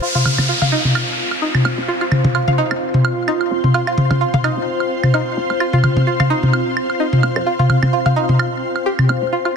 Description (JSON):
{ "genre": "minimal techno", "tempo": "129 BPM", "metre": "4/4", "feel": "swing 55% on 16ths", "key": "unclear", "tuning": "A4 = 440 Hz", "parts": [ { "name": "string-like resonator pluck", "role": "riff", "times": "0.0-9.5 s", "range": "Eb4 to F5", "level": "-22 LUFS", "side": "right 1 dB", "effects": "chorus, phaser, ping-pong delay" }, { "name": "downlifter", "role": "sound effects", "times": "0.0-3.7 s", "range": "none", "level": "-22 LUFS", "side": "equal", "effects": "none" }, { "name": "ethereal airy pad", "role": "texture", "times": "0.0-9.6 s", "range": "F4 to C6", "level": "-22 LUFS", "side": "equal", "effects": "ensemble chorus, built-in reverb, phaser" }, { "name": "swarming drone", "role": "texture", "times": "0.6-9.6 s", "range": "C4", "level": "-30 LUFS", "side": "right 2 dB", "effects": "built-in reverb" }, { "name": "electronic toms, woodblock and claves", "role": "percussion", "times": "0.2-9.5 s", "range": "none", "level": "-16 LUFS", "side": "equal", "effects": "none" }, { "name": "woody FM bass", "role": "bass", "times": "0.4-9.3 s", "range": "F1 to F2", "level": "-27 LUFS", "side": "equal", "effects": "high-pass filter" } ], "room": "light reverb", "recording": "dense, heavily limited modern master", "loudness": "-14 LUFS", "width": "side -6 dB against mid", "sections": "0.0-9.6 A section", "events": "none", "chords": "0.0 F5" }